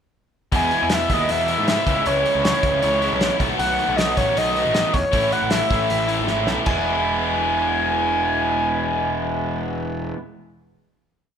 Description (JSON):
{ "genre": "indie rock", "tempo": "156 BPM", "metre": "4/4", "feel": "straight", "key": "E major", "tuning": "A4 = 442 Hz", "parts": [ { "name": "biting overdriven guitar", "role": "riff", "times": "0.5-10.2 s", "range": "E2 to F#4", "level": "-25 LUFS", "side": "left 7 dB", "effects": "none" }, { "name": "overdriven electric guitar", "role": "riff", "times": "0.5-10.2 s", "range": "E2 to F#4", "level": "-25 LUFS", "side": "right 9 dB", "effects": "none" }, { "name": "fuzz picked electric bass", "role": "bass", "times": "0.5-10.1 s", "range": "E1 to G#2", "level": "-28 LUFS", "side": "equal", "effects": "overdrive" }, { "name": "cloth-damped thuddy drum kit", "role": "drums", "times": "0.5-6.8 s", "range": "crash cymbal, hi-hat, kick drum, snare drum", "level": "-25 LUFS", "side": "equal", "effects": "none" }, { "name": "overdriven synth lead", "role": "melody", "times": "0.6-10.1 s", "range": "C#5 to G#5", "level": "-22 LUFS", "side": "left 1 dB", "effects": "distortion" } ], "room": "moderate recital hall reverb, RT60 1.3 s", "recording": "recorded in a church or concert hall", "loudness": "-18 LUFS", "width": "side -8 dB against mid", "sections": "0.5-6.7 interlude; 6.7-9.7 final chord", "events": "drum fill 6.3-6.7", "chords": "0.5 Emaj7; 1.9 C#m; 3.4 B7; 5.1 Amaj7; 6.7 E" }